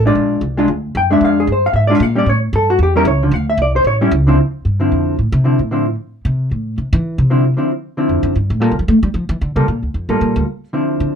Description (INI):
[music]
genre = jazz, small-group swing and bop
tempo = 227 BPM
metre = 4/4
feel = swing 59% on 8ths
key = D minor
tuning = A4 = 441 Hz
[part]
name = hollow-body jazz guitar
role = accompaniment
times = 0.0-11.1 s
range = D3 to G5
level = -15 LUFS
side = equal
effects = none
[part]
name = upright bass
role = bass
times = 0.0-11.1 s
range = A1 to A3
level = -16 LUFS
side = equal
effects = none
[sound]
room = light reverb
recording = none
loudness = -13 LUFS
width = side -7 dB against mid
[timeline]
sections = 0.0-4.4 A section; 4.4-11.2 A section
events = upright bass solo 4.4-11.2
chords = 0.2 Bb7; 2.3 A7; 3.3 Cadd9; 3.9 A7; 4.4 Dm9; 8.6 Gm9